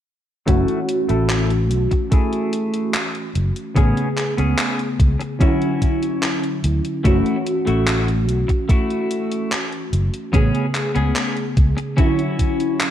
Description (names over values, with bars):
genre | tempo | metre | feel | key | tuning
vaporwave | 73 BPM | 4/4 | straight | unclear | A4 = 440 Hz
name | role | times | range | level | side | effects
mellow FM electric piano | accompaniment | 0.5-12.9 s | C#3 to G#4 | -22 LUFS | equal | ensemble chorus, analog delay
clean electric guitar | riff | 0.5-12.8 s | A3 to A4 | -26 LUFS | left 1 dB | wide subtle chorus, low-pass filter, analog delay
fretless electric bass | bass | 0.5-11.7 s | F#1 to D2 | -19 LUFS | equal | none
electronic kick drum | drums | 0.5-12.6 s | none | -17 LUFS | equal | studio reverb
gated 80s digital drum machine | drums | 0.5-12.9 s | handclaps, hi-hat | -25 LUFS | equal | gated reverb, studio reverb
room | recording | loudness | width
light reverb | cassette tape | -17 LUFS | side -11 dB against mid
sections
0.5-12.9 A section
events
filter sweep on clean electric guitar 0.5-12.9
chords
0.5 F#m7; 3.8 Amaj9; 5.4 Dmaj9; 7.1 F#m7; 10.3 Amaj9; 12.0 Dmaj9